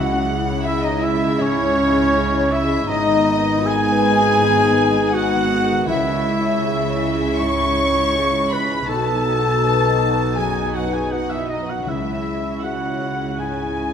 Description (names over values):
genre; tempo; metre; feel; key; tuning
cinematic, emotional film score for orchestra; 80 BPM; 4/4; rubato; C# minor; A4 = 440 Hz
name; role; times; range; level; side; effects
warm studio violin section; melody; 0.0-13.9 s; C#5 to C#6; -28 LUFS; left 1 dB; none
clear studio violin section; second line; 0.0-13.9 s; C#5 to C#6; -27 LUFS; left 3 dB; none
concert flute; second line; 0.0-13.9 s; C#5 to C#6; -26 LUFS; left 1 dB; none
dark clarinet; second line; 0.0-13.9 s; C#4 to C#5; -23 LUFS; left 3 dB; none
warm oboe; second line; 0.0-13.9 s; C#5 to C#6; -26 LUFS; right 2 dB; none
dark concert grand piano; accompaniment; 0.0-13.9 s; B1 to D#5; -27 LUFS; left 1 dB; none
warm studio viola section; accompaniment; 0.0-13.9 s; G#3 to F#4; -28 LUFS; right 4 dB; none
dark French horn section; sustained chords; 0.0-13.9 s; F#3 to E4; -28 LUFS; left 2 dB; none
concert harp; arpeggios; 0.0-13.9 s; G#2 to B5; -29 LUFS; left 8 dB; none
dark studio double bass section; bass; 0.0-13.9 s; G#1 to C#2; -28 LUFS; right 4 dB; none
warm studio cello section; bass; 0.0-13.9 s; G#2 to C#3; -26 LUFS; right 3 dB; none
room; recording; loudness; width
moderate scoring stage reverb, RT60 1.9 s; none; -16 LUFS; side -8 dB against mid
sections
0.0-13.9 A section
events
none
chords
0.0 C#m; 2.9 G#m; 5.9 C#m; 8.9 B; 11.9 C#m